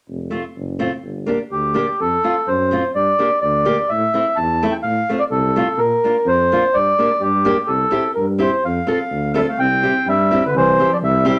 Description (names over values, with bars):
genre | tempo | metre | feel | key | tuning
alpine folk, alpine dance band | 126 BPM | 2/4 | straight | F major | A4 = 441 Hz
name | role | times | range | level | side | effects
mellow tuba | bass | 0.1-11.3 s | F1 to Bb2 | -25 LUFS | equal | none
fingerpicked old ladder-braced acoustic guitar | accompaniment | 0.3-11.4 s | A3 to A4 | -24 LUFS | equal | none
mellow accordion | melody | 1.5-11.4 s | G4 to A5 | -19 LUFS | equal | none
mellow clarinet | second line | 9.4-11.4 s | D3 to C4 | -24 LUFS | equal | none
room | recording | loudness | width
moderate studio reverb, RT60 0.6 s | none | -18 LUFS | mono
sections
0.1-2.0 A section; 2.0-9.6 B section; 9.6-11.4 C section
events
none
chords
0.1 F; 1.0 Gm; 2.0 F; 2.9 Gm; 3.9 Am; 4.8 F/A; 5.8 Bb; 6.7 Gm; 7.7 C; 8.6 F; 9.6 C